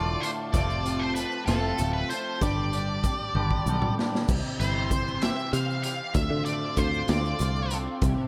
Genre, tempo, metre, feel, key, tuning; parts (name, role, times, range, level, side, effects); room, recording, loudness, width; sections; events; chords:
psychedelic rock; 64 BPM (dotted quarters); 6/8; straight; D minor; A4 = 441 Hz
octave-fuzz lead guitar; melody; 0.0-7.8 s; A4 to F5; -34 LUFS; equal; distortion, tape echo
rich symphonic string section; sustained chords; 0.0-8.3 s; D3 to A5; -39 LUFS; equal
twangy electric guitar; riff; 0.0-8.3 s; D2 to C5; -34 LUFS; equal; phaser
picked electric bass; bass; 0.0-8.1 s; D1 to D3; -31 LUFS; equal
raw garage drum kit; drums; 0.2-8.2 s; crash cymbal, hi-hat, kick drum, snare drum, toms; -32 LUFS; equal
tube shaker; percussion; 0.5-8.2 s; -48 LUFS; equal
moderate plate reverb, RT60 2.0 s, small room ambience; dreamy mix soaked in reverb; -27 LUFS; mono
0.0-4.3 A section; 4.3-8.3 B section
drum fill 3.4-4.3
0.0 Dm; 0.5 F; 2.4 Gsus2; 4.3 C; 6.2 Dm7